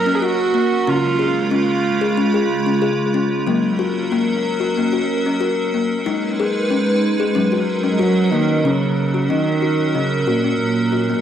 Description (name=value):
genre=world meditative, meditative tuned percussion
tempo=93 BPM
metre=4/4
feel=straight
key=F# major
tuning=A4 = 440 Hz
part: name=dark cello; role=melody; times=0.0-2.5, 7.9-11.2 s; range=A#2 to A#4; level=-19 LUFS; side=right 5 dB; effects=cassette tape, tape echo
part: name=icy glass pad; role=sustained chords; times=0.0-11.2 s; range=C#3 to B4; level=-20 LUFS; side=right 1 dB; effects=chorus, built-in reverb
part: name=kalimba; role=arpeggios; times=0.0-11.2 s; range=C#3 to G#4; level=-20 LUFS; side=left 5 dB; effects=tape echo
room=wet spring reverb, RT60 1.1 s, small room ambience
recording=home recording on cassette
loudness=-16 LUFS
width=side -9 dB against mid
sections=0.0-8.7 A section; 8.7-11.2 B section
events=none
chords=0.0 F#; 0.9 C#; 3.5 F#; 6.1 G#m; 7.4 F#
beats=0.23 | 0.88 1.53 2.17 2.82 | 3.47 4.12 4.76 5.41 | 6.06 6.71 7.36 8.01 | 8.65 9.30 9.95 10.60